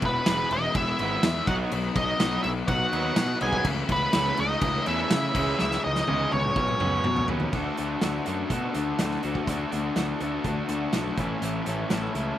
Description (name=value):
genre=indie rock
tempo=124 BPM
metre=4/4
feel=straight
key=unclear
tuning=A4 = 440 Hz
part: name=warm trumpet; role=second line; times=0.0-7.2 s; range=B3 to G#4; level=-36 LUFS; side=right 6 dB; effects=none
part: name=overdriven electric guitar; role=riff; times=0.0-12.4 s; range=A2 to A4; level=-32 LUFS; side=right 5 dB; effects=none
part: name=raw garage guitar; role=riff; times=0.0-12.4 s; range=A2 to F#4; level=-31 LUFS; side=left 7 dB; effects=overdrive, slapback echo
part: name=fuzz picked electric bass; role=bass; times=0.0-12.3 s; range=E1 to C#3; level=-30 LUFS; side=equal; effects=overdrive
part: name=loose indie drum kit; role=drums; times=0.0-12.3 s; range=crash cymbal, hi-hat, kick drum, snare drum, toms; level=-29 LUFS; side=equal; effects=none
part: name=octave-fuzz lead guitar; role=melody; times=0.1-7.3 s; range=B4 to G#5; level=-27 LUFS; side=equal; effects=distortion
room=little or no reverb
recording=none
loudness=-23 LUFS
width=side -12 dB against mid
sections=0.0-7.5 A section; 7.5-12.4 B section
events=drum fill 5.6-7.5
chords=0.0 E; 1.5 B; 3.7 Aadd9/C#; 5.4 C#m; 6.6 Bsus2; 7.5 D; 11.2 A